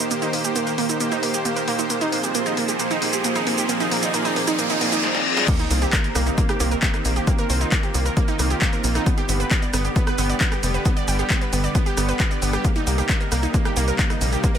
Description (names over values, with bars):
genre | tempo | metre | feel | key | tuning
uplifting trance | 134 BPM | 4/4 | straight | C minor | A4 = 441 Hz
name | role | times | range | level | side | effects
supersaw pad | sustained chords | 0.0-14.6 s | C3 to D5 | -27 LUFS | equal | sidechain pumping
wide unison pluck | arpeggios | 0.0-14.6 s | Bb3 to G5 | -24 LUFS | right 3 dB | sidechain pumping, digital delay
punchy analog drum machine | drums | 0.0-14.6 s | crash cymbal, handclaps, hi-hat, rim click, shaker, snare drum | -26 LUFS | equal | sidechain pumping on hats, high-pass filter on hats, high-pass filter on snare, sidechain pumping on perc, high-pass filter on perc, sidechain pumping on cymbals, high-pass filter on cymbals, high-pass filter on room
riser, reverse cymbal and sub drop | sound effects | 0.8-7.3 s | none | -28 LUFS | left 1 dB | none
electronic kick drum | drums | 5.5-14.5 s | none | -21 LUFS | left 1 dB | none
tight sequencer bass | bass | 5.7-14.4 s | F1 to C2 | -22 LUFS | left 1 dB | tube saturation, sidechain pumping
room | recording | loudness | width
light reverb, digital ambience | none | -18 LUFS | side -8 dB against mid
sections
0.0-5.5 A section; 5.5-14.6 B section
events
build-up 0.0-5.5; filter sweep on synth pluck 0.0-5.5; riser 0.8-5.0; reverse cymbal 4.6-5.5; drum fill 5.0-5.5; drop 5.5-14.6; impact 5.5-7.3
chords
0.0 Cm7; 1.9 Fm; 5.5 Cm7; 9.1 G; 12.6 Cm7